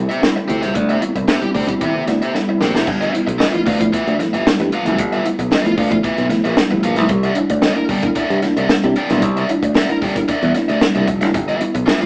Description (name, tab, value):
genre	funk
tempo	113 BPM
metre	4/4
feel	straight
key	G mixolydian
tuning	A4 = 439 Hz
part	bright tonewheel organ	sustained chords	0.0-2.8 s	G3 to E4	-31 LUFS	equal	none
part	mellow tine electric piano	stabs	0.0-12.1 s	G2 to E4	-24 LUFS	equal	none
part	modern bright fingered electric bass	bass	0.0-12.1 s	F1 to C3	-23 LUFS	equal	none
part	biting overdriven guitar	accompaniment	0.1-12.1 s	F4 to G5	-23 LUFS	equal	none
part	compact cocktail drum kit	drums	0.1-12.1 s	crash cymbal, hi-hat, kick drum, snare drum	-22 LUFS	equal	none
part	congas	percussion	0.2-12.0 s	none	-28 LUFS	equal	none
room	wet large studio reverb, RT60 0.9 s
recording	band playing live in one room, vinyl crackle, small speaker sound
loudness	-17 LUFS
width	mono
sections	0.0-2.9 A section; 2.9-12.1 B section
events	drum fill 2.3-2.9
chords	0.0 D9sus4; 2.9 G13; 7.1 C9; 11.3 G13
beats	0.22 | 0.75 1.28 1.81 2.34 | 2.87 3.39 3.92 4.45 | 4.98 5.51 6.04 6.57 | 7.10 7.63 8.16 8.69 | 9.22 9.75 10.28 10.81 | 11.34 11.87